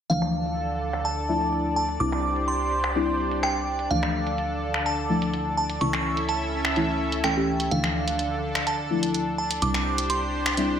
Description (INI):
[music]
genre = progressive house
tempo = 126 BPM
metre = 4/4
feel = straight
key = D minor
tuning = A4 = 440 Hz
[part]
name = glassy synth bell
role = melody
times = 0.1-10.8 s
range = F5 to D6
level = -28 LUFS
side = right 1 dB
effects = chorus, tape echo
[part]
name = lush unison pad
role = sustained chords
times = 0.1-10.8 s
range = D3 to E5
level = -31 LUFS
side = equal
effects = chorus
[part]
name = deep mellow chord stab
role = stabs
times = 0.1-10.8 s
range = E3 to A4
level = -28 LUFS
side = left 2 dB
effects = chorus, phaser, tape echo
[part]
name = plucky analog bass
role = bass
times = 0.1-10.8 s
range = C2 to D2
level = -32 LUFS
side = equal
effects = none
[part]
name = house drum kit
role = drums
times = 0.1-10.7 s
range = finger snaps, hi-hat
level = -30 LUFS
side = equal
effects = overdrive, low-pass filter on hats, low-pass filter on snare, low-pass filter on room
[sound]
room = moderate lush hall reverb, RT60 1.6 s, digital ambience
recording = none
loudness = -23 LUFS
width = side -8 dB against mid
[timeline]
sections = 0.1-10.8 A section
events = filter sweep on drum 0.1-10.8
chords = 0.1 Dmadd9; 2.0 Cadd9; 3.9 Dmadd9; 5.8 A/C#; 7.7 Dmadd9; 9.6 Cadd9